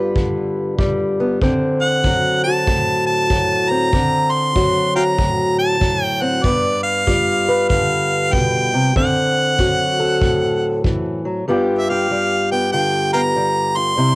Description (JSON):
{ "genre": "acoustic country blues, solo or duo", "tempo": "95 BPM", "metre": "4/4", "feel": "swing 64% on 8ths", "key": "unclear", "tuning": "A4 = 440 Hz", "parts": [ { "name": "fingerpicked acoustic archtop guitar", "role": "accompaniment", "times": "0.0-14.2 s", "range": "G2 to B4", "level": "-18 LUFS", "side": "left 1 dB", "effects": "none" }, { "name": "kick drum", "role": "drums", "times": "0.2-11.0 s", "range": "none", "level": "-20 LUFS", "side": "equal", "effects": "none" }, { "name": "bright harmonica", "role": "melody", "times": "1.8-14.2 s", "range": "D5 to C6", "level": "-18 LUFS", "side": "right 1 dB", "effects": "cassette tape" } ], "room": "light reverb", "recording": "home recording on cassette", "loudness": "-15 LUFS", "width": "side -23 dB against mid", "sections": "0.0-11.5 A section; 11.5-14.2 A section", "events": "none", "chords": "0.0 G7; 1.4 D7; 6.4 G7; 9.0 D7; 11.5 G7" }